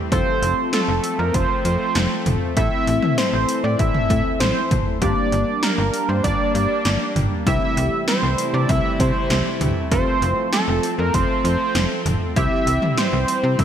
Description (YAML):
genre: synth-pop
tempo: 98 BPM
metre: 4/4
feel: straight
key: F major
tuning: A4 = 438 Hz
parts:
  - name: funky polysynth comp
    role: accompaniment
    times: 0.0-13.6 s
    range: Bb3 to A4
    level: -26 LUFS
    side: left 3 dB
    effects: chorus
  - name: sweeping resonant pad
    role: sustained chords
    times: 0.0-13.6 s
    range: C3 to E4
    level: -28 LUFS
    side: equal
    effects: chorus
  - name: fat analog lead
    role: melody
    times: 0.1-13.6 s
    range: A4 to E5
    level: -22 LUFS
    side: right 2 dB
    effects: chorus, ping-pong delay
  - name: slap-like FM bass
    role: bass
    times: 0.1-13.6 s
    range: F1 to C3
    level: -22 LUFS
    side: equal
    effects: none
  - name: 80s electronic pad drums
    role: drums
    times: 0.1-13.6 s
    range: hi-hat, kick drum, snare drum, toms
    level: -23 LUFS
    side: equal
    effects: gated reverb on snare and toms, overdrive
room: moderate lush hall reverb, RT60 2.1 s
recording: bright 1980s-style digital production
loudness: -17 LUFS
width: side -9 dB against mid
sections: 0.0-13.6 A section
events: none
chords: 0.1 F; 2.6 Am; 5.0 Gm; 7.5 C6; 9.9 F; 12.4 C